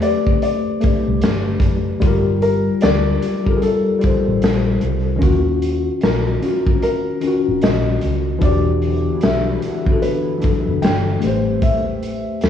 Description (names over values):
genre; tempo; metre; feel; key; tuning
lo-fi hip hop; 75 BPM; 4/4; swing 61% on 16ths; unclear; A4 = 440 Hz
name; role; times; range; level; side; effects
felt-muted upright piano; melody; 0.0-12.5 s; G#4 to G5; -24 LUFS; left 1 dB; low-pass filter, analog delay, plate reverb
mellow tine electric piano; accompaniment; 0.0-12.5 s; D#3 to D5; -19 LUFS; left 3 dB; medium stereo tremolo, cassette tape, low-pass filter, plate reverb
raw garage drum kit; drums; 0.0-12.5 s; hi-hat, kick drum, snare drum; -20 LUFS; equal; none
vintage muted fingered electric bass; bass; 1.1-12.5 s; E1 to E2; -20 LUFS; equal; none
hollow soft pad; sustained chords; 8.4-11.6 s; D3 to G4; -29 LUFS; right 2 dB; chorus, low-pass filter, plate reverb
room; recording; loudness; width
moderate studio reverb, RT60 0.6 s; cassette tape, small room ambience; -15 LUFS; side -9 dB against mid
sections
0.0-12.5 A section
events
kick muted 6.8-8.4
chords
0.0 Am9; 2.0 Gm9; 5.2 D#m9; 8.4 Em9; 11.2 Am9